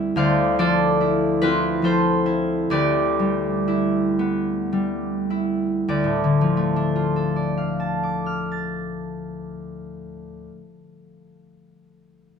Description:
classical, solo harp piece; 32-49 BPM (dotted quarters); 6/8; rubato; D dorian; A4 = 440 Hz
concert harp; solo; 0.0-10.6 s; D2 to A6; -20 LUFS; equal
moderate studio reverb, RT60 0.9 s; minimal, uncompressed stereo recording; -19 LUFS; side -6 dB against mid
0.0-5.9 A section; 5.9-9.1 B section
slowing down 0.0-5.9
0.2 Dm9; 2.7 Em7/D; 5.9 Dm

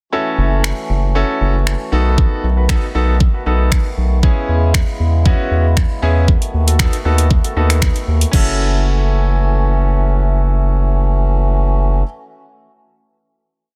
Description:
dance-pop; 117 BPM; 4/4; straight; F# dorian; A4 = 440 Hz
bright concert grand piano; accompaniment; 0.1-12.1 s; B3 to B4; -24 LUFS; equal; sidechain pumping
hand-pumped harmonium; sustained chords; 0.1-12.0 s; C#3 to F#4; -27 LUFS; equal; sidechain pumping
round analog bass; bass; 0.4-12.0 s; F#1 to E2; -17 LUFS; equal; sidechain pumping
pop drum kit; drums; 0.6-8.5 s; crash cymbal, finger snaps, hi-hat, kick drum; -18 LUFS; equal; overdrive
little or no reverb; dense, heavily limited modern master; -15 LUFS; mono
0.1-8.3 verse; 8.3-12.4 final chord
0.1 F#m7; 1.9 B7; 4.2 E6; 6.3 B7/D#; 8.3 F#m7

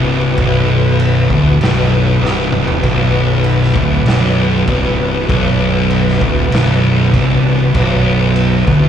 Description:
stoner and doom metal; 98 BPM; 4/4; straight; B phrygian; A4 = 440 Hz
mellow tonewheel organ; sustained chords; 0.0-8.9 s; B3 to B4; -22 LUFS; left 1 dB; slow rotary speaker, chorus vibrato
thick fuzz guitar; riff; 0.0-8.9 s; B1 to D2; -16 LUFS; left 7 dB; distortion
thick fuzz guitar; riff; 0.0-8.9 s; B1 to D2; -15 LUFS; right 6 dB; distortion
fuzz fingered electric bass; bass; 0.0-8.9 s; B0 to D1; -18 LUFS; equal; overdrive
raw garage drum kit; drums; 0.4-8.8 s; crash cymbal, kick drum, snare drum, toms; -20 LUFS; equal
light reverb, small room ambience; live gig heard through the venue's PA, club reverb; -11 LUFS; side -9 dB against mid
0.0-8.9 A section
drum fill 2.2-2.8
0.0 Bm

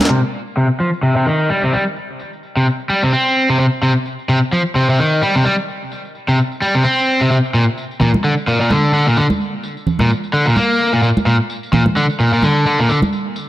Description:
breakbeat, breaks; 129 BPM; 4/4; swing 58% on 16ths; A4 = 440 Hz
tambourine; drums; 0.0-13.5 s; -37 LUFS; left 1 dB
congas; percussion; 0.0-0.1, 8.0-13.1 s; -20 LUFS; right 2 dB
cranked stack guitar; riff; 0.1-13.0 s; Bb2 to C4; -14 LUFS; equal; overdrive, low-pass filter, analog delay
moderate digital room reverb, RT60 1.2 s, digital ambience; dry, gritty hardware recording; -13 LUFS; side -14 dB against mid
0.1-13.5 A section

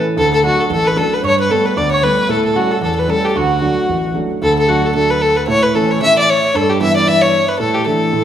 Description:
celtic folk, Celtic reel; 226 BPM; 4/4; swing 57% on 8ths; D major; A4 = 439 Hz
breathy reedy long shakuhachi; second line; 0.0-8.2 s; F#4 to E5; -23 LUFS; left 4 dB
mandolin; second line; 0.0-4.1 s; F#4 to D5; -23 LUFS; right 4 dB
dark baby grand piano; accompaniment; 0.0-8.2 s; A1 to D4; -17 LUFS; right 2 dB
dark fiddle; melody; 0.2-8.2 s; F#4 to E5; -14 LUFS; left 1 dB
wet recital hall reverb, RT60 1.4 s; recorded in a church or concert hall; -12 LUFS; side -10 dB against mid
0.0-4.4 A section; 4.4-8.2 A section
0.2 D; 1.2 Gadd9; 2.3 A7; 3.4 D; 5.5 A; 6.5 G6; 7.6 Asus4

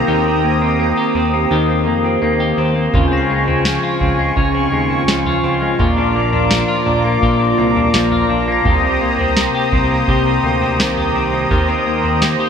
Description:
dream pop; 84 BPM; 4/4; straight; A4 = 440 Hz
warm analog pad; sustained chords; 0.0-12.5 s; C4 to Eb6; -18 LUFS; right 1 dB; chorus, tremolo, shimmer reverb
clean electric guitar; arpeggios; 0.0-12.5 s; Bb2 to G4; -17 LUFS; left 2 dB; lush chorus, ping-pong delay, shimmer reverb
fat analog bass; bass; 0.0-12.4 s; Bb1 to F2; -22 LUFS; equal
soft vintage rhythm box; drums; 2.9-12.4 s; kick drum, snare drum, toms; -20 LUFS; right 1 dB
glockenspiel with rubber mallets; texture; 3.1-9.0 s; G6 to C7; -26 LUFS; left 4 dB; ping-pong delay, shimmer reverb
wet plate reverb, RT60 2.5 s; bright 1980s-style digital production; -13 LUFS; side -7 dB against mid
0.0-12.5 A section
0.1 Eb6; 2.9 Dbmaj7; 5.8 Bb; 8.7 Cm7; 11.5 Eb6

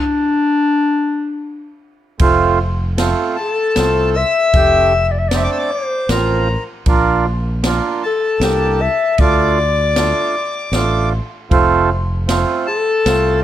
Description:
klezmer; 77 BPM; 3/4; straight; A4 = 440 Hz
dark clarinet; melody; 0.0-13.4 s; D4 to E5; -16 LUFS; left 4 dB
mellow accordion; accompaniment; 2.2-13.4 s; F3 to G4; -18 LUFS; right 6 dB
fingered electric bass; bass; 2.2-13.4 s; F1 to D2; -18 LUFS; equal
open jazz drum kit; drums; 2.2-13.2 s; kick drum, ride cymbal, snare drum; -20 LUFS; equal
accordion; second line; 3.4-13.4 s; A5 to E6; -23 LUFS; left 2 dB
light reverb; close, detailed microphones; -13 LUFS; side -12 dB against mid
0.0-2.2 A section; 2.2-11.5 B section; 11.5-13.4 B section
stop 0.0-2.2
0.0 N.C.; 2.2 F; 6.9 Bb; 9.2 Dm; 11.5 F

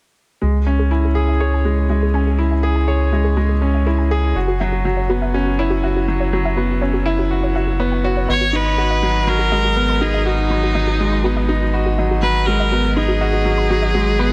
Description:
electronica; 122 BPM; 4/4; straight; A4 = 439 Hz
soft round pluck; arpeggios; 0.4-14.2 s; F#4 to B5; -29 LUFS; equal; chorus, shimmer reverb, digital delay
bright upright piano; riff; 0.4-14.3 s; F#3 to C#5; -22 LUFS; equal; shimmer reverb, digital delay
round analog bass; bass; 0.4-14.3 s; F#1 to C#2; -21 LUFS; equal
clear viola; melody; 8.3-14.3 s; D#4 to C#5; -22 LUFS; equal; shimmer reverb, digital delay
moderate lush hall reverb, RT60 2.5 s; -18 LUFS; mono
0.4-14.3 A section
filter sweep on synth arpeggio sound 0.4-14.3
0.4 C#m; 4.4 F#7sus4; 8.3 G#m7

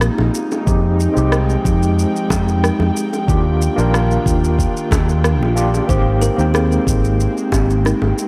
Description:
sunset chillout; 92 BPM; 4/4; straight; F dorian; A4 = 440 Hz
overdriven tine electric piano; accompaniment; 0.0-8.3 s; Ab3 to G5; -23 LUFS; equal; fast tremolo, low-pass filter, delay
airy breathy pad; sustained chords; 0.0-8.3 s; Eb3 to G5; -26 LUFS; equal; chorus
fingered electric bass; bass; 0.0-8.1 s; Ab1 to F2; -19 LUFS; equal
electronic rim click and shaker; drums; 0.0-8.3 s; -27 LUFS; equal
bongos; percussion; 0.2-8.1 s; -28 LUFS; equal
electronic kick drum; drums; 0.7-7.7 s; -21 LUFS; equal
kalimba; arpeggios; 5.9-8.1 s; Eb4 to C5; -26 LUFS; equal; delay
light reverb; dark, warm production; -16 LUFS; mono
0.0-8.3 A section
filter sweep on tine electric piano 0.0-8.3
0.0 Bb9sus4; 0.7 Fm9; 3.3 Ebmaj9; 5.9 Abmaj9

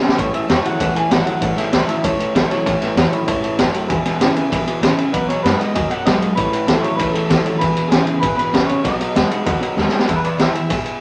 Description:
rockabilly; 194 BPM; 4/4; straight; E major; A4 = 439 Hz
picked steel-string acoustic guitar; accompaniment; 0.0-11.0 s; E2 to F#4; -27 LUFS; equal
warm upright piano; accompaniment; 0.0-10.9 s; B4 to B5; -30 LUFS; equal
electric guitar through a small old amp; riff; 0.0-10.1 s; E2 to G#3; -24 LUFS; equal
upright bass; bass; 0.0-10.9 s; E1 to F#2; -32 LUFS; equal
raw garage drum kit; drums; 0.1-10.9 s; kick drum, ride cymbal, snare drum; -21 LUFS; equal
electric guitar through a small old amp; melody; 0.2-10.7 s; G#4 to G#5; -25 LUFS; equal
moderate studio reverb, RT60 0.6 s; -17 LUFS; mono
0.0-10.1 A section
drum fill 0.0, 9.8-10.1
0.2 A; 3.9 E; 5.1 B; 6.4 A; 7.6 E; 8.8 B; 10.1 E

